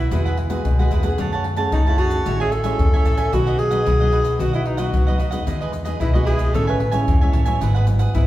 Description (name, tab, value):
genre	samba and choro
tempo	112 BPM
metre	4/4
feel	straight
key	E major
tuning	A4 = 440 Hz
part	breathy alto saxophone	melody	0.0-8.3 s	D#4 to B4	-23 LUFS	equal	none
part	cavaquinho	accompaniment	0.0-8.3 s	E4 to A5	-26 LUFS	right 4 dB	none
part	nylon-string guitar	accompaniment	0.0-8.3 s	G#2 to G#4	-27 LUFS	left 1 dB	none
part	upright bass	bass	0.0-8.3 s	G#1 to F#2	-22 LUFS	equal	none
part	egg shaker, surdo and pandeiro	percussion	0.1-8.3 s	none	-21 LUFS	left 1 dB	none
room	wet recital hall reverb, RT60 1.6 s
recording	recorded in a church or concert hall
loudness	-17 LUFS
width	side -15 dB against mid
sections	0.0-8.3 A section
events	none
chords	0.1 Eadd9; 1.2 F#madd9; 2.3 Amaj7; 3.3 B; 5.5 Emaj7; 6.5 Amaj7; 7.6 Eadd9/G#